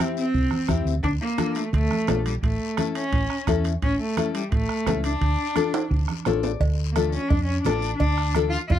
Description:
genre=latin, cumbia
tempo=172 BPM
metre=4/4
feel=straight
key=D harmonic minor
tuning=A4 = 441 Hz
part: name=rich cello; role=melody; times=0.0-8.8 s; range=G3 to F4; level=-26 LUFS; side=equal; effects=none
part: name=nylon-string guitar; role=accompaniment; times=0.0-8.6 s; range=C4 to D5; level=-26 LUFS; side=left 11 dB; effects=none
part: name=bombo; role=percussion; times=0.0-8.8 s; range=none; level=-26 LUFS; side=right 2 dB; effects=none
part: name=congas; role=percussion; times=0.0-8.8 s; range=none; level=-32 LUFS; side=right 4 dB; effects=none
part: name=guiro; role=percussion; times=0.2-8.8 s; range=none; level=-41 LUFS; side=left 28 dB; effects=none
part: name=hollow-body short-scale fingered electric bass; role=bass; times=0.3-8.8 s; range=A1 to F2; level=-25 LUFS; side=equal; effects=none
part: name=timbales and cowbell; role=percussion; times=1.0-8.8 s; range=none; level=-32 LUFS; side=right 7 dB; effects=none
room=little or no reverb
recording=dry, close 1970s-style studio recording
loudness=-21 LUFS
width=side -11 dB against mid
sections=0.0-6.6 A section; 6.6-8.8 B section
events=drum fill 5.7-6.6; nylon-string guitar fill 6.1-6.6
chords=0.0 C; 1.0 Dm; 2.4 A; 5.2 Dm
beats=0.34 0.69 | 1.04 1.39 1.74 2.08 | 2.43 2.78 3.13 3.48 | 3.82 4.17 4.52 4.87 | 5.22 5.57 5.91 6.26 | 6.61 6.96 7.31 7.66 | 8.00 8.35 8.70

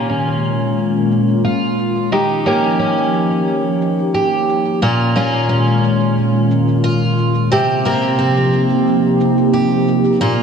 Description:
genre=folktronica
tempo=89 BPM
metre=4/4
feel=straight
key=Bb dorian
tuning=A4 = 440 Hz
part: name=warbly tape-like pad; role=sustained chords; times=0.0-10.4 s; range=Bb2 to G4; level=-16 LUFS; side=equal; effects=chorus, built-in reverb
part: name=picked twelve-string acoustic guitar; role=arpeggios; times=0.0-10.4 s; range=Bb2 to G4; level=-16 LUFS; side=equal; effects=low-pass filter, digital delay
part: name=cabasa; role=drums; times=0.1-10.3 s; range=none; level=-50 LUFS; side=right 2 dB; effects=none
room=moderate plate reverb, RT60 2.6 s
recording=dark, warm production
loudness=-13 LUFS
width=side -6 dB against mid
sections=0.0-10.4 A section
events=none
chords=0.0 Bbm; 2.1 Eb7; 4.8 Bbm; 7.5 Cm7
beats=0.10 0.77 1.45 | 2.12 2.79 3.47 4.14 | 4.82 5.49 6.17 6.84 | 7.51 8.19 8.86 9.54 | 10.21

